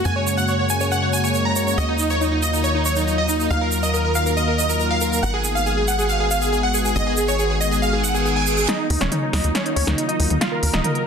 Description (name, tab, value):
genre	uplifting trance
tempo	139 BPM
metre	4/4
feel	straight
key	Eb minor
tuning	A4 = 440 Hz
part	tight sequencer bass	bass	0.0-10.8 s	Eb1 to Gb2	-24 LUFS	equal	none
part	supersaw chords	melody	0.1-11.0 s	Db4 to Bb5	-21 LUFS	right 1 dB	wide subtle chorus, low-pass filter, dub echo
part	egg shaker	percussion	0.1-8.7 s	none	-28 LUFS	right 5 dB	none
part	reverse cymbal and riser	sound effects	8.0-11.1 s	none	-28 LUFS	right 6 dB	none
part	techno drum kit	drums	8.7-11.0 s	hi-hat, snare drum, toms	-22 LUFS	equal	low-pass filter on snare, low-pass filter on hats, low-pass filter on toms
room	light reverb, digital ambience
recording	dense, heavily limited modern master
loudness	-18 LUFS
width	side -6 dB against mid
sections	0.0-8.7 A section; 8.7-11.1 B section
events	reverse cymbal 8.0-8.7; build-up 8.7-11.1; drum fill 8.7-11.1; filter sweep on supersaw synth 8.7-11.1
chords	0.0 Gbadd9; 1.8 Ebmadd9; 5.2 Abm7; 8.7 Ebmadd9